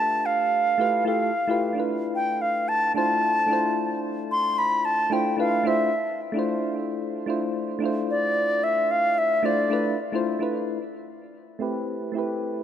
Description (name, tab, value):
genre	chillout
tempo	111 BPM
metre	4/4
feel	swing 57% on 16ths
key	D dorian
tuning	A4 = 438 Hz
part	bright reedy baroque flute	melody	0.0-10.0 s	D5 to C6	-23 LUFS	equal	ping-pong delay
part	soft electric-piano-like synth keys	accompaniment	0.0-12.6 s	A3 to C5	-26 LUFS	equal	chorus, auto-pan, low-pass filter, tape echo
room	moderate plate reverb, RT60 2.6 s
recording	rough home demo mix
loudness	-22 LUFS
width	side -9 dB against mid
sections	0.0-10.8 A section; 10.8-12.6 B section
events	filter sweep on synth keys 10.8-12.6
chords	0.0 G13; 1.9 Dm9; 10.8 Am9